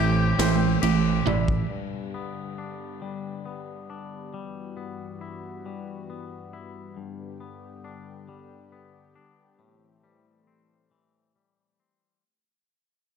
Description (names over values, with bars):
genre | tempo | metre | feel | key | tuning
post-rock | 46 BPM (dotted quarters) | 6/8 | straight | G major | A4 = 440 Hz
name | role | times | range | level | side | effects
octave-fuzz lead guitar | melody | 0.0-0.8 s | G5 | -32 LUFS | left 1 dB | distortion, slapback echo
warm analog pad | sustained chords | 0.0-12.2 s | G2 to G4 | -39 LUFS | left 4 dB | chorus
felt-muted upright piano | arpeggios | 0.0-1.7 s | D5 to E5 | -37 LUFS | right 1 dB | slapback echo
twangy electric guitar | arpeggios | 0.0-12.2 s | G2 to G4 | -35 LUFS | left 8 dB | slapback echo
overdriven electric guitar | riff | 0.0-1.7 s | A2 to E3 | -24 LUFS | right 10 dB | none
fingered electric bass | bass | 0.0-1.6 s | A1 | -26 LUFS | left 1 dB | none
big rock drum kit | drums | 0.4-1.7 s | kick drum, ride cymbal, snare drum, toms | -29 LUFS | left 1 dB | none
room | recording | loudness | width
light reverb, studio reverb | dark, warm production | -25 LUFS | side -7 dB against mid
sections
0.0-1.7 A section; 1.7-12.2 B section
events
drum fill 1.3-1.7; fade-out 1.7-12.2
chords
0.0 Am7; 1.7 G; 4.3 Emadd9/G; 7.0 G; 9.6 Am7